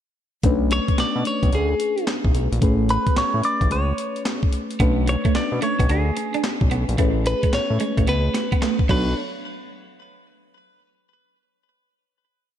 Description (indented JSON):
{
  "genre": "R&B, new jack swing",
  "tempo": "110 BPM",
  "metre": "4/4",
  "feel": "swing 64% on 16ths",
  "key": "B dorian",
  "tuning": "A4 = 444 Hz",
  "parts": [
    { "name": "mellow FM electric piano", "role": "accompaniment", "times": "0.4-9.2 s", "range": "A3 to C#5", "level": "-26 LUFS", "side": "left 3 dB", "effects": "chorus, slapback echo" },
    { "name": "fat analog bass", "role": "bass", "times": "0.4-9.1 s", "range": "A1 to B2", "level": "-22 LUFS", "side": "equal", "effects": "none" },
    { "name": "boom bap sampler-style drum kit", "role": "drums", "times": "0.4-9.1 s", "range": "crash cymbal, handclaps, hi-hat, kick drum, snare drum", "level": "-22 LUFS", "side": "equal", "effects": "none" },
    { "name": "direct-recorded clean electric guitar", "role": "melody", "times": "0.7-9.2 s", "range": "G#4 to D5", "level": "-25 LUFS", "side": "equal", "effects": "phaser, slapback echo, digital delay" },
    { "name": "electric guitar at the edge of break-up", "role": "riff", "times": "4.8-9.1 s", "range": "F#3 to D4", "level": "-27 LUFS", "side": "right 6 dB", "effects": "analog chorus" }
  ],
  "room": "light reverb, digital ambience",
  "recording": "none",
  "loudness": "-18 LUFS",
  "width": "side -10 dB against mid",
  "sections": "0.4-9.2 verse; 9.2-11.3 final hit",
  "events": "none",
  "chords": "0.4 Bm9; 2.6 Amaj9; 4.8 Bm9; 7.0 Amaj9; 8.9 Bm9; 9.2 N.C.",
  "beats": "| 0.43 0.98 1.53 2.07 | 2.62 3.16 3.71 4.25 | 4.80 5.34 5.89 6.43 | 6.98 7.53 8.07 8.62 | 9.16"
}